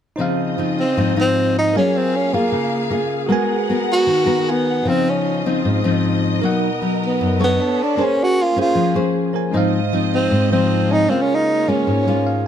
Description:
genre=bossa nova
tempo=154 BPM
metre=4/4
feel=straight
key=Db major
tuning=A4 = 440 Hz
part: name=bell-like tine electric piano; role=accompaniment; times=0.2-12.5 s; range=Ab3 to A5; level=-25 LUFS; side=right 4 dB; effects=medium stereo tremolo
part: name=nylon-string guitar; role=accompaniment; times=0.2-12.5 s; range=Gb2 to Db5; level=-19 LUFS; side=left 2 dB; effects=none
part: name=warm studio string section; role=sustained chords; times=0.2-12.5 s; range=Ab3 to Gb5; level=-28 LUFS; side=equal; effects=none
part: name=breathy tenor saxophone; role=melody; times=0.8-12.5 s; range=Bb3 to Gb4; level=-18 LUFS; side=right 1 dB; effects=none
room=light reverb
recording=close, detailed microphones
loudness=-16 LUFS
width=side -9 dB against mid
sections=0.2-12.5 A section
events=tine electric piano fill 12.1-12.5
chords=0.2 Dbmaj9; 1.8 Gbmaj9; 3.3 Abm9; 4.9 Dbmaj9; 6.4 Cbmaj7; 7.6 Cbm9; 8.0 Bbm9; 9.5 Dbmaj9/Ab (rootless); 11.1 Db6

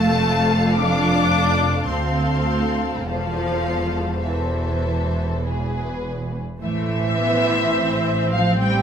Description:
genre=classical, slow romantic movement for string orchestra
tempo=49-56 BPM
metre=3/4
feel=rubato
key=A minor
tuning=A4 = 440 Hz
part: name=muted symphonic violin section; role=melody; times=0.0-8.8 s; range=C5 to D6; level=-28 LUFS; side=left 5 dB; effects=none
part: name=muted studio violin section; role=second line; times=0.0-8.8 s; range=G#4 to G5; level=-24 LUFS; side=left 2 dB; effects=none
part: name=muted symphonic viola section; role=accompaniment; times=0.0-8.8 s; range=E3 to C5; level=-24 LUFS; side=right 1 dB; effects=none
part: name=muted symphonic cello section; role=bass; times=0.0-8.8 s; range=D2 to G3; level=-24 LUFS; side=right 1 dB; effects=none
part: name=muted symphonic double bass section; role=bass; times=0.0-8.8 s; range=E1 to D2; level=-25 LUFS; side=right 2 dB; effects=none
room=light reverb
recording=close, detailed microphones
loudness=-18 LUFS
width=side -8 dB against mid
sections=0.0-6.6 A section; 6.6-8.8 B section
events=none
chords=0.0 F; 1.9 Dm7; 3.1 Am/E; 5.4 E; 6.6 Am

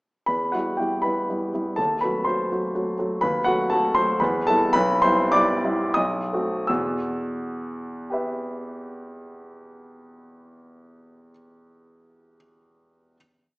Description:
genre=classical, romantic character piece for solo piano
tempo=80-128 BPM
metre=3/4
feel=rubato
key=E minor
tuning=A4 = 440 Hz
part: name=warm grand piano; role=solo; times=0.3-13.2 s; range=B1 to E6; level=-21 LUFS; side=equal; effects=none
room=wet recital hall reverb, RT60 1.6 s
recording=small speaker sound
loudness=-21 LUFS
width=side -26 dB against mid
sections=0.3-6.7 A section; 6.7-10.9 final chord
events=slowing down 2.5-6.7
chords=0.3 Em; 1.8 D#dim7; 4.2 Em; 4.7 Em/B; 6.0 B7b9; 6.7 Em

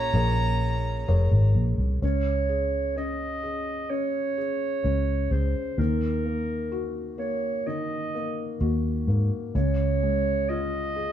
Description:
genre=acoustic folk-pop ballad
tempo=64 BPM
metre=4/4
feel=straight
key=unclear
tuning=A4 = 439 Hz
part: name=rich violin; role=melody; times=0.0-1.5 s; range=Bb5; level=-30 LUFS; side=left 1 dB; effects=none
part: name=warm clarinet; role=second line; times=0.0-11.1 s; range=Bb4 to Eb5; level=-30 LUFS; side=right 4 dB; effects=none
part: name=felt-muted upright piano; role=accompaniment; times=0.0-11.1 s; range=Db3 to Db5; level=-31 LUFS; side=left 4 dB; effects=none
part: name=warm chamber string section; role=sustained chords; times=0.0-2.0 s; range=Bb2 to Db4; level=-39 LUFS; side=left 1 dB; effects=none
part: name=vintage muted fingered electric bass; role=bass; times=0.0-11.1 s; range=F1 to Ab2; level=-24 LUFS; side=equal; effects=none
room=wet studio reverb, RT60 0.9 s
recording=heard from further back in the room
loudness=-24 LUFS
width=side -10 dB against mid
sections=0.0-2.0 A section; 2.0-11.1 B section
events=clarinet solo 2.0-11.1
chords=0.0 Bbm7; 2.0 Db5; 5.8 Ebm; 9.5 Db

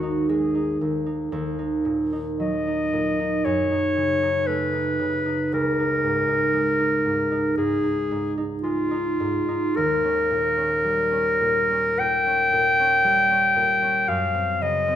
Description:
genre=classical, impressionist duo for clarinet and harp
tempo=57 BPM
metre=4/4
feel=rubato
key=Db mixolydian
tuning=A4 = 436 Hz
part: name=clear clarinet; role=melody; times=0.0-15.0 s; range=F4 to G5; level=-21 LUFS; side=left 1 dB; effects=none
part: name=concert harp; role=accompaniment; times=0.0-15.0 s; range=Ab1 to Eb4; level=-25 LUFS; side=right 2 dB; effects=none
room=moderate recital hall reverb, RT60 1.7 s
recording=minimal, uncompressed stereo recording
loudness=-20 LUFS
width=side -10 dB against mid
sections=0.0-15.0 A section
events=none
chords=0.0 Ab5; 1.3 Ebm; 3.4 Gbm6; 5.5 Dbadd9; 9.8 Eb7; 14.1 Gb5

